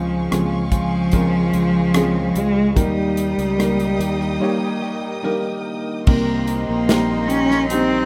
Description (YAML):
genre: pop ballad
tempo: 73 BPM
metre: 4/4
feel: straight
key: unclear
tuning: A4 = 440 Hz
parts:
  - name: rich cello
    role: melody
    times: 0.0-8.1 s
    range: F3 to Db4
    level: -22 LUFS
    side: equal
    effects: none
  - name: warm upright piano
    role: accompaniment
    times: 0.0-8.1 s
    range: C3 to Db5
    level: -28 LUFS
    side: equal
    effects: none
  - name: warm studio string section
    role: sustained chords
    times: 0.0-8.1 s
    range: Ab4 to Eb6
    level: -34 LUFS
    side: equal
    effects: none
  - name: direct-recorded clean electric guitar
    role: arpeggios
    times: 0.0-8.1 s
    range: C3 to G4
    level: -31 LUFS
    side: equal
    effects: none
  - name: fingered electric bass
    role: bass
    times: 0.0-8.1 s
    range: Bb1 to Eb2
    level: -28 LUFS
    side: equal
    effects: none
  - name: modern studio drum kit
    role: drums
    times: 0.3-7.9 s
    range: crash cymbal, hi-hat, kick drum, rim click, snare drum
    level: -23 LUFS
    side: equal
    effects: none
  - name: warm studio cello section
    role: second line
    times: 6.1-8.1 s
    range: Eb4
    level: -29 LUFS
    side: equal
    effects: none
room: light reverb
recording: rough home demo mix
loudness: -19 LUFS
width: mono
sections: 0.0-6.1 A section; 6.1-8.1 B section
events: break 4.4-6.1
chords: 0.0 Dbmaj7; 2.8 Eb; 6.1 Cm7